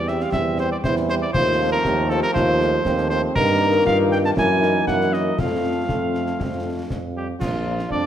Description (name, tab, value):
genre	military-style march for wind band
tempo	119 BPM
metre	2/4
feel	straight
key	F major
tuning	A4 = 440 Hz
part	mellow cornet	melody	0.0-8.1 s	F4 to A5	-23 LUFS	equal	none
part	warm euphonium	second line	0.0-8.1 s	F3 to G4	-27 LUFS	right 3 dB	none
part	warm trombone section	sustained chords	0.0-8.1 s	Eb3 to D4	-29 LUFS	right 1 dB	none
part	warm tuba	bass	0.0-8.1 s	Bb1 to G2	-24 LUFS	right 2 dB	none
part	mellow French horn section	accompaniment	0.1-7.7 s	G3 to Bb4	-26 LUFS	left 6 dB	none
part	concert snare drum, concert bass drum and clash cymbals	drums	0.1-8.1 s	none	-29 LUFS	left 1 dB	none
room	moderate recital hall reverb, RT60 1.4 s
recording	none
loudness	-18 LUFS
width	side -10 dB against mid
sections	0.0-7.4 A section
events	none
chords	0.0 C/E; 1.3 F7/Eb; 3.4 Eb/G; 4.4 Gb7; 5.4 F; 7.4 Bb